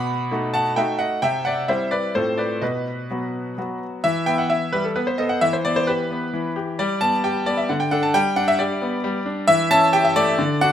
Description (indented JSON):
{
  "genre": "classical-period piano sonatina",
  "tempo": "132 BPM",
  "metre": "3/4",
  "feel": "straight",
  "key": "E minor",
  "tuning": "A4 = 441 Hz",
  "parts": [
    { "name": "bright grand piano", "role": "solo", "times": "0.0-10.7 s", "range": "A2 to B5", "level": "-19 LUFS", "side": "equal", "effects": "none" }
  ],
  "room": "moderate recital hall reverb, RT60 1.6 s",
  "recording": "close, detailed microphones",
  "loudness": "-19 LUFS",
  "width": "side -9 dB against mid",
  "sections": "0.0-4.0 A section; 4.0-10.7 B section",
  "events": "none",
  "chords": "0.0 B7; 1.2 C; 2.1 F/A; 2.6 B; 4.0 Em; 5.0 B7b9; 5.4 Em; 6.8 G; 7.7 D5; 8.1 G; 9.5 A7/E",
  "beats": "0.31 0.77 | 1.22 1.68 2.14 | 2.62 3.10 3.57 | 4.04 4.50 4.96 | 5.42 5.88 6.33 | 6.78 7.24 7.69 | 8.14 8.59 9.03 | 9.48 9.93 10.38"
}